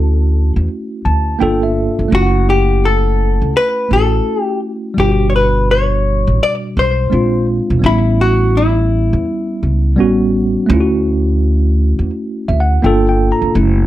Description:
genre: hip hop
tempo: 84 BPM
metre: 4/4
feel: swing 62% on 16ths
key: unclear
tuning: A4 = 439 Hz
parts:
  - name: hollow-body jazz guitar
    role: melody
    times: 0.0-12.8 s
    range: E4 to D5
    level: -16 LUFS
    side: left 2 dB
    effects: slapback echo
  - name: tine electric piano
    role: accompaniment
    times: 0.0-13.9 s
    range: B2 to Bb5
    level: -17 LUFS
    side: right 1 dB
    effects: medium stereo tremolo
  - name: upright bass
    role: bass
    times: 0.0-13.9 s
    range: E1 to E2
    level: -14 LUFS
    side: equal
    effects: none
room: light reverb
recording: none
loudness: -12 LUFS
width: side -14 dB against mid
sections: 0.0-13.6 A section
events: tine electric piano fill 0.7-2.1, 12.1-13.6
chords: 0.0 Dmaj7; 1.4 Gm7; 2.1 F#m7; 5.0 Gmaj7#11; 7.1 A#9; 7.8 A7; 10.0 A13; 10.7 Dmaj7; 12.8 Gm7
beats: 0.70 1.41 | 2.13 2.84 3.55 4.27 | 4.98 5.70 6.41 7.13 | 7.84 8.55 9.27 9.98 | 10.70 11.41 12.13 12.84 | 13.55

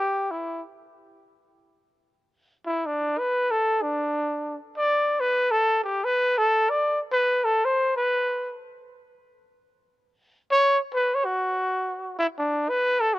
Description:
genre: jazz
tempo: free time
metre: none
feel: none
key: B minor from 4.9 s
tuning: A4 = 442 Hz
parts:
  - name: breathy trumpet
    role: solo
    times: 0.0-0.6, 2.7-13.2 s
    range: D4 to D5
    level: -22 LUFS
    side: equal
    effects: none
room: light reverb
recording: close, detailed microphones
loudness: -22 LUFS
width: side -16 dB against mid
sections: 0.0-4.9 A section; 4.9-12.5 B section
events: none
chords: none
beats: free time

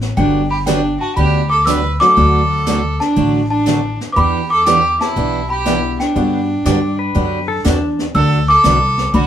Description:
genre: country, western swing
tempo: 120 BPM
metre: 4/4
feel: swing 68% on 8ths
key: G major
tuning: A4 = 440 Hz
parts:
  - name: upright bass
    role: bass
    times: 0.0-9.3 s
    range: G1 to G2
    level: -18 LUFS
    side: left 1 dB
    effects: none
  - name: jazz brush drum kit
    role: drums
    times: 0.0-9.3 s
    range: brushed snare drum, hi-hat, snare drum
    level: -25 LUFS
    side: equal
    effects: none
  - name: celesta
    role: melody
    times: 0.2-9.3 s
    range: G5 to E6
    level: -16 LUFS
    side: equal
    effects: none
  - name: clear fiddle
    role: second line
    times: 0.2-9.3 s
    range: D4 to B4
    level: -20 LUFS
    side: right 2 dB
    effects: none
  - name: picked steel-string acoustic guitar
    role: accompaniment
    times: 0.2-9.3 s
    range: D3 to G4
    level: -19 LUFS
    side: right 3 dB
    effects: none
  - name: bright upright piano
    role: accompaniment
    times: 2.0-2.6, 5.7-6.5 s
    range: F#3 to F#4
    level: -22 LUFS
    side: left 6 dB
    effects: none
  - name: pedal steel guitar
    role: second line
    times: 6.7-8.1 s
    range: D4 to D5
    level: -21 LUFS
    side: left 3 dB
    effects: none
room: wet studio ambience, RT60 0.5 s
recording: band playing live in one room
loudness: -12 LUFS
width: side -10 dB against mid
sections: 0.0-9.3 A section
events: none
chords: 0.2 Gmaj7; 2.2 D; 4.2 Em7; 6.2 Gmaj7; 8.1 D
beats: | 0.17 0.67 1.17 1.67 | 2.17 2.67 3.17 3.66 | 4.16 4.66 5.16 5.66 | 6.15 6.65 7.15 7.64 | 8.14 8.64 9.13

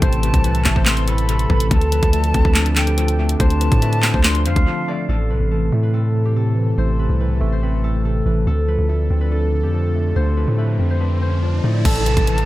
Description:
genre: hip hop, trap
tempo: 142 BPM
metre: 4/4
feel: half-time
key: A minor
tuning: A4 = 440 Hz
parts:
  - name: concert harp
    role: melody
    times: 0.0-12.5 s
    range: G4 to D5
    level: -26 LUFS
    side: right 1 dB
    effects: dub echo
  - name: mellow concert flute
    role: second line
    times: 0.0-5.1, 11.9-12.5 s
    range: F5 to C6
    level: -26 LUFS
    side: left 1 dB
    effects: dub echo
  - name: tine electric piano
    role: accompaniment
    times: 0.0-12.5 s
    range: A2 to D4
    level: -24 LUFS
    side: left 1 dB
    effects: medium stereo tremolo, dub echo
  - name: sweeping resonant pad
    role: sustained chords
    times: 0.0-11.8 s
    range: E3 to A4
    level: -30 LUFS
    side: left 1 dB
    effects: chorus
  - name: long sustained 808-style bass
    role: bass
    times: 0.0-12.5 s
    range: A1 to A2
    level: -18 LUFS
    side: equal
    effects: none
  - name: trap drum kit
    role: drums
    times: 0.0-4.7, 11.9-12.5 s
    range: crash cymbal, handclaps, hi-hat, kick drum, snare drum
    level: -18 LUFS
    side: equal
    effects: none
  - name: riser and downlifter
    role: sound effects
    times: 10.3-12.5 s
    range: none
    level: -31 LUFS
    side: right 1 dB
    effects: none
room: digital ambience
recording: echo-heavy mix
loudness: -15 LUFS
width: side -16 dB against mid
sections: 0.0-5.1 A section; 5.1-11.9 B section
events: break 4.7-5.1; riser 10.3-11.9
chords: 0.0 Am; 1.7 Dm7; 5.1 Am; 8.5 Dm7; 11.9 Am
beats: | 0.02 0.44 0.86 1.29 | 1.71 2.13 2.56 2.98 | 3.40 3.82 4.25 4.67 | 5.09 5.51 5.94 6.36 | 6.78 7.20 7.63 8.05 | 8.47 8.89 9.32 9.74 | 10.16 10.58 11.01 11.43 | 11.85 12.27

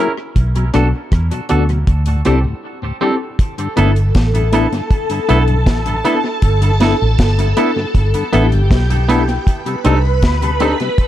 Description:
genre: lovers rock reggae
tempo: 79 BPM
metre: 4/4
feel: straight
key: G major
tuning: A4 = 439 Hz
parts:
  - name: mellow tonewheel organ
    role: accompaniment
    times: 0.0-10.9 s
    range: D2 to E4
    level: -24 LUFS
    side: left 4 dB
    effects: slow rotary speaker
  - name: tine electric piano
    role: accompaniment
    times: 0.0-10.7 s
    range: B3 to A#4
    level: -21 LUFS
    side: left 3 dB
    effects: overdrive, fast stereo tremolo
  - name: twangy electric guitar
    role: stabs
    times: 0.0-10.7 s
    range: B3 to A#4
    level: -21 LUFS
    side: right 4 dB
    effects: tape echo
  - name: vintage muted fingered electric bass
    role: bass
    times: 0.4-10.7 s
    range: G1 to E2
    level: -14 LUFS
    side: equal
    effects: none
  - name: deep reggae drum kit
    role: drums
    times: 0.4-11.1 s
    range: hi-hat, kick drum, rim click, snare drum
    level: -17 LUFS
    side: equal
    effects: tape echo
  - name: phased string machine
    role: second line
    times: 3.7-11.1 s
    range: G4 to B5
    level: -21 LUFS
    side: left 1 dB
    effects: ensemble chorus, phaser
room: small room ambience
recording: dark, warm production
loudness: -12 LUFS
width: side -12 dB against mid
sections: 0.0-3.4 A section; 3.4-11.1 B section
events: break 2.6-3.4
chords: 0.4 Bm7; 1.9 D7sus4; 3.4 G69; 9.5 Cm6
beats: | 0.36 1.12 1.88 2.63 | 3.39 4.15 4.91 5.67 | 6.43 7.19 7.95 8.71 | 9.46 10.22 10.98

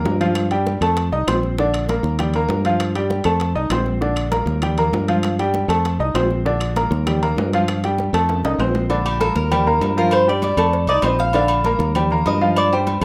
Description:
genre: latin, salsa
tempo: 197 BPM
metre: 4/4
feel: straight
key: Bb major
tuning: A4 = 439 Hz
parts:
  - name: bright baby grand piano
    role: accompaniment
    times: 0.0-13.0 s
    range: D3 to Eb6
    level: -23 LUFS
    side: equal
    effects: none
  - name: fingered electric bass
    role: bass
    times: 0.0-13.0 s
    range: Bb1 to G2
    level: -24 LUFS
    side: equal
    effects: none
  - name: bongos and cowbell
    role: percussion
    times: 0.1-13.0 s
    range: none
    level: -34 LUFS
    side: equal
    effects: none
  - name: congas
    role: percussion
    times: 0.1-13.0 s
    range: none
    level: -32 LUFS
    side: equal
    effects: none
  - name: timbales and agogo bells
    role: percussion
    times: 0.1-13.0 s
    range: none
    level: -28 LUFS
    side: equal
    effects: none
  - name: claves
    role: percussion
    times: 0.4-13.0 s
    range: none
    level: -36 LUFS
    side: equal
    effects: none
  - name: Cuban tres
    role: melody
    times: 9.1-13.0 s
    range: G4 to F5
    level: -23 LUFS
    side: equal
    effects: none
room: moderate studio reverb, RT60 0.7 s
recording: rough home demo mix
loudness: -19 LUFS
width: mono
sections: 0.0-8.9 A section; 8.9-13.0 B section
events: drum fill 8.3-8.9; Cuban tres solo 8.9-13.0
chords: 0.4 Fadd9; 1.0 F7; 1.6 Bb; 2.2 Eb; 2.8 Fadd9; 3.4 F7; 4.0 Bb; 4.6 Eb; 5.2 Fadd9; 5.8 F7; 6.5 Bb; 7.1 Eb; 7.7 Fadd9; 8.3 F7; 8.9 Bb; 9.5 Eb; 10.1 G5; 10.7 F7; 11.3 Bb; 12.0 Eb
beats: 0.06 | 0.36 0.67 0.97 1.27 | 1.58 1.88 2.19 2.49 | 2.80 3.10 3.41 3.71 | 4.02 4.32 4.63 4.93 | 5.24 5.54 5.84 6.15 | 6.46 6.76 7.07 7.37 | 7.68 7.98 8.29 8.59 | 8.90 9.21 9.51 9.82 | 10.12 10.43 10.73 11.04 | 11.34 11.65 11.95 12.26 | 12.56 12.87

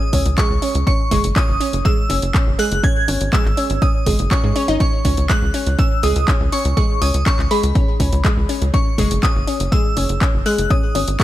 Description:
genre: progressive house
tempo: 122 BPM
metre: 4/4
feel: straight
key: C# minor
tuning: A4 = 441 Hz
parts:
  - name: glassy synth bell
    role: melody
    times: 0.0-11.2 s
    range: B5 to G#6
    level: -24 LUFS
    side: equal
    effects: chorus, phaser, ping-pong delay
  - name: analog pluck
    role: arpeggios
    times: 0.1-11.2 s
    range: G#3 to D#4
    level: -22 LUFS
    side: equal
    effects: chorus, vintage 12-bit sampler grit, sidechain pumping, ping-pong delay
  - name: tight sequencer bass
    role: bass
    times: 0.1-11.2 s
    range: F#1 to G#2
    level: -20 LUFS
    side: equal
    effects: sidechain pumping
  - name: electronic kick drum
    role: drums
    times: 0.1-11.2 s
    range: none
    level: -17 LUFS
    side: equal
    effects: none
  - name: house drum kit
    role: drums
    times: 0.1-11.2 s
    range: handclaps, hi-hat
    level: -25 LUFS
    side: left 1 dB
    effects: sidechain pumping on hats
room: little or no reverb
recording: none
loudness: -15 LUFS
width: side -14 dB against mid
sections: 0.0-11.2 A section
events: none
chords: 0.0 N.C.; 0.9 F#5; 2.8 G#5; 4.8 C#5; 8.7 F#5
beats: 0.38 | 0.87 1.36 1.85 2.34 | 2.84 3.33 3.82 4.31 | 4.80 5.29 5.79 6.28 | 6.77 7.26 7.75 8.25 | 8.74 9.23 9.72 10.21 | 10.71 11.20

